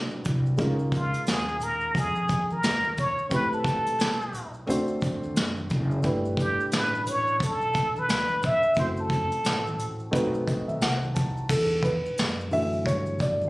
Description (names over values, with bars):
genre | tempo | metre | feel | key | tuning
hip hop, jazz-hop | 88 BPM | 4/4 | swing 61% on 16ths | unclear | A4 = 440 Hz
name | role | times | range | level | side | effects
dark concert grand piano | accompaniment | 0.0-13.5 s | D3 to A5 | -30 LUFS | equal | none
upright bass | bass | 0.0-13.5 s | F#1 to G2 | -31 LUFS | equal | none
maracas and congas | percussion | 0.1-13.5 s | none | -41 LUFS | equal | none
vintage brush drum kit | drums | 0.2-13.4 s | crash cymbal, hi-hat, kick drum, snare drum | -28 LUFS | equal | none
trumpet with plunger mute | melody | 1.0-10.0 s | E#4 to E5 | -26 LUFS | equal | none
room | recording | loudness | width
light reverb | recorded on a phone in the room, studio reverb, compression | -23 LUFS | side -20 dB against mid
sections
0.0-11.5 A section; 11.5-13.5 A section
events
muted trumpet solo 0.0-11.5; grand piano fill 10.1-11.5; grand piano solo 11.5-13.5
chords
0.0 D13; 0.6 C#69; 3.3 Am9; 4.7 D7; 6.0 G69; 8.8 F#m7b5; 10.1 B7b9; 11.5 Em11